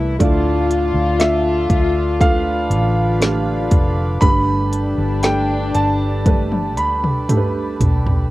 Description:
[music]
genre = pop ballad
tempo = 59 BPM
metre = 4/4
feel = straight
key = unclear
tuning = A4 = 440 Hz
[part]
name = mellow French horn section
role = second line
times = 0.0-7.8 s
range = D4 to F4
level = -22 LUFS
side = left 4 dB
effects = tape echo
[part]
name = felt-muted upright piano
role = accompaniment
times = 0.0-8.3 s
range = G2 to D5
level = -24 LUFS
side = right 4 dB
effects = none
[part]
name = pedal harmonium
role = sustained chords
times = 0.0-8.3 s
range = D3 to B4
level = -26 LUFS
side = right 1 dB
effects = none
[part]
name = vintage muted fingered electric bass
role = bass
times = 0.0-8.3 s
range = F1 to D2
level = -20 LUFS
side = equal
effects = none
[part]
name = deep house drum kit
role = drums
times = 0.2-8.3 s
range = hi-hat, kick drum, snare drum, toms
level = -17 LUFS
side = equal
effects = none
[part]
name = warm grand piano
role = melody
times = 1.2-7.8 s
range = E5 to B5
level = -23 LUFS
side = right 1 dB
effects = tape echo
[sound]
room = little or no reverb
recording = home recording on cassette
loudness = -15 LUFS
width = side -17 dB against mid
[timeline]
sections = 0.0-8.3 A section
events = drum fill 6.3-8.3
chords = 0.2 Dm; 4.2 Gadd9

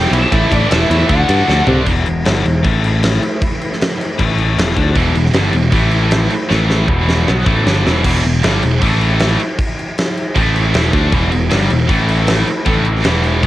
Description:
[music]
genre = hard rock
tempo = 156 BPM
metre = 4/4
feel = straight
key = unclear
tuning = A4 = 439 Hz
[part]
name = high-gain lead guitar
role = melody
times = 0.0-1.6 s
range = D5 to G5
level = -20 LUFS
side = left 2 dB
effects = distortion, tape echo
[part]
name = nasal lead guitar with a parked wah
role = second line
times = 0.0-1.6 s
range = D4 to G4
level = -24 LUFS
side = right 6 dB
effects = overdrive, cassette tape
[part]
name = analog string pad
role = sustained chords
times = 0.0-8.0, 11.1-13.5 s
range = E3 to E5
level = -27 LUFS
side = equal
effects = none
[part]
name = cranked stack guitar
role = riff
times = 0.0-13.5 s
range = E2 to D4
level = -19 LUFS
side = left 7 dB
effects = overdrive, cassette tape
[part]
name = heavy high-gain guitar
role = riff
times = 0.0-1.9, 5.0-13.5 s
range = E2 to D4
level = -19 LUFS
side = right 7 dB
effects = distortion, cassette tape
[part]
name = modern bright picked electric bass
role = bass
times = 0.0-13.5 s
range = E1 to C3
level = -16 LUFS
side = equal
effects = none
[part]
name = huge arena drum kit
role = drums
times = 0.1-13.5 s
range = crash cymbal, kick drum, ride cymbal, snare drum, toms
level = -17 LUFS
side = equal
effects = cassette tape
[sound]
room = little or no reverb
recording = home recording on cassette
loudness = -12 LUFS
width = side -15 dB against mid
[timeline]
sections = 0.0-1.9 A section; 1.9-8.0 B section; 8.0-13.5 B section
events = drum fill 1.5-1.9, 6.5-8.0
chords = 0.3 A5; 1.1 D; 1.9 Em; 2.6 A5; 4.6 Em; 5.7 A5; 6.9 Em; 8.8 A5; 10.7 Em; 11.9 A5

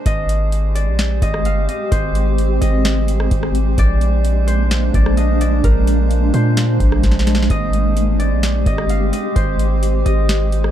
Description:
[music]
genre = hip hop, atmospheric cloud-rap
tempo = 129 BPM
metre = 4/4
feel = half-time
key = Ab lydian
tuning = A4 = 439 Hz
[part]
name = Celtic harp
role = melody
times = 0.0-10.7 s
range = Bb4 to F5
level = -24 LUFS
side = right 2 dB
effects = low-pass filter, ping-pong delay
[part]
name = drifting glass-harmonics texture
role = texture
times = 0.0-10.7 s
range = Ab3 to C5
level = -32 LUFS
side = right 2 dB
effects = chorus, built-in reverb
[part]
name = granular cloud pad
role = sustained chords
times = 0.1-10.7 s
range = Ab3 to G4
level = -21 LUFS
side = equal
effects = built-in reverb, sidechain pumping
[part]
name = long sustained 808-style bass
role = bass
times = 0.1-10.7 s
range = G1 to Bb2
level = -17 LUFS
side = equal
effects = none
[part]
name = booming analog drum machine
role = drums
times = 0.1-10.7 s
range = hi-hat, kick drum, rim click, snare drum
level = -19 LUFS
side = equal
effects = none
[sound]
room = little or no reverb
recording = dark, warm production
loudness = -14 LUFS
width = side -11 dB against mid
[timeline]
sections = 0.1-10.7 A section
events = drum fill 7.0-7.5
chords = 0.1 Abmaj7; 3.8 Bb9; 7.5 Abmaj7

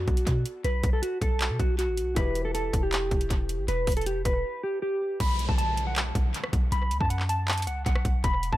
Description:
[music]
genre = hip hop, trap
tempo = 158 BPM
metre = 4/4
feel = half-time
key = B minor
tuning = A4 = 440 Hz
[part]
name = mellow electric guitar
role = melody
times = 0.0-8.6 s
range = F#4 to B5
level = -30 LUFS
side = equal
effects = analog chorus, low-pass filter, tape echo
[part]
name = dark concert grand piano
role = accompaniment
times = 0.0-5.2 s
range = E3 to D5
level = -40 LUFS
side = left 3 dB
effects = low-pass filter, tape echo
[part]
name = warm 808-style bass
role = bass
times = 0.0-8.6 s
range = E1 to B2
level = -28 LUFS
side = equal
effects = none
[part]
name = trap drum kit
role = drums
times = 0.1-8.6 s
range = crash cymbal, handclaps, hi-hat, kick drum, rim click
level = -28 LUFS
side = equal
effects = tape echo
[part]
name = downlifter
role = sound effects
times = 5.2-8.2 s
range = none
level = -38 LUFS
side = left 1 dB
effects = none
[sound]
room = light reverb, digital ambience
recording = echo-heavy mix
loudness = -24 LUFS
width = side -15 dB against mid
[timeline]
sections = 0.0-5.2 A section; 5.2-8.6 B section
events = break 4.4-5.2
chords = 0.0 Bm7; 2.2 Em; 5.2 B5

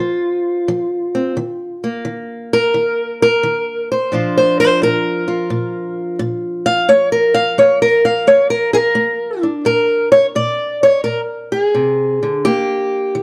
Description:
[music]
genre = acoustic country blues, solo or duo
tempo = 87 BPM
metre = 4/4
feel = swing 68% on 8ths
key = Bb mixolydian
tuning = A4 = 439 Hz
[part]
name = fingerpicked old ladder-braced acoustic guitar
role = solo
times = 0.0-13.2 s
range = Bb2 to F5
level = -16 LUFS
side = equal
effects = none
[sound]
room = light reverb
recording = none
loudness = -16 LUFS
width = mono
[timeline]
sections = 0.0-9.7 A section; 9.7-13.2 B section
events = steel-string acoustic guitar solo 0.0-9.7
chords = 0.0 F5; 1.4 Eb5; 4.1 Bb; 12.4 Eb

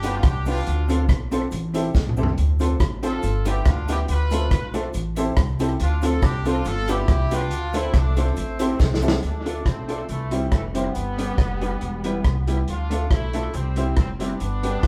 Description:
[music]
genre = ska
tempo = 140 BPM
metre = 4/4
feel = swing 54% on 8ths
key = D dorian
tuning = A4 = 441 Hz
[part]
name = clear horn section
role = melody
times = 0.0-14.9 s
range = E3 to B4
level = -32 LUFS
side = equal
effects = none
[part]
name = archtop guitar, miked and amplified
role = accompaniment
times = 0.0-14.9 s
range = G3 to D5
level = -31 LUFS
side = equal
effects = none
[part]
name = bright upright piano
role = stabs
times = 0.0-14.8 s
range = G3 to A4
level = -33 LUFS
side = equal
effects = none
[part]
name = upright bass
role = bass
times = 0.0-14.9 s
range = E1 to D2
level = -27 LUFS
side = equal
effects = none
[part]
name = vintage drum kit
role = drums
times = 0.0-14.9 s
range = hi-hat, kick drum, rim click, snare drum, toms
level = -25 LUFS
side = equal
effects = none
[part]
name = cabasa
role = percussion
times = 0.0-9.1 s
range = none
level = -54 LUFS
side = equal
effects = none
[sound]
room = moderate large studio reverb, RT60 0.9 s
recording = band playing live in one room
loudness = -22 LUFS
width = mono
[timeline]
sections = 0.0-9.2 A section; 9.2-14.9 B section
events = drum fill 1.9-2.4, 8.8-9.2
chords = 0.0 G7; 0.7 Dm7; 1.5 Am7; 2.4 Dm7; 3.2 G7; 4.1 Dm7; 4.9 Am7; 5.8 Dm7; 6.7 G7; 7.5 Dm7; 8.4 Am7; 9.2 Dm; 10.1 C; 10.9 G; 11.8 Em; 12.7 Dm; 13.5 C

